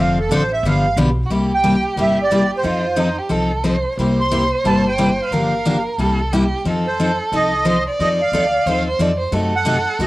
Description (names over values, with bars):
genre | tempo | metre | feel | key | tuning
acoustic string swing (jazz manouche) | 180 BPM | 4/4 | swing 60% on 8ths | unclear | A4 = 440 Hz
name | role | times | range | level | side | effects
accordion | melody | 0.0-10.1 s | A4 to C6 | -20 LUFS | right 2 dB | light tremolo tuning, cassette tape
picked steel-string acoustic guitar | accompaniment | 0.0-10.1 s | C3 to A4 | -18 LUFS | left 1 dB | cassette tape
upright bass | bass | 0.0-10.1 s | F1 to F#2 | -25 LUFS | equal | none
warm violin | second line | 1.3-10.1 s | Eb4 to D5 | -22 LUFS | right 2 dB | cassette tape
room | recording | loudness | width
moderate spring reverb, RT60 1.2 s, small room ambience | home recording on cassette | -15 LUFS | side -18 dB against mid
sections
0.0-1.3 A section; 1.3-10.1 B section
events
accordion solo 0.0-1.3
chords
0.0 Dm7; 0.6 G7; 1.3 C7; 2.6 F7; 4.0 C7; 5.3 Gm7; 6.0 C7; 6.7 F7; 9.3 F#dim7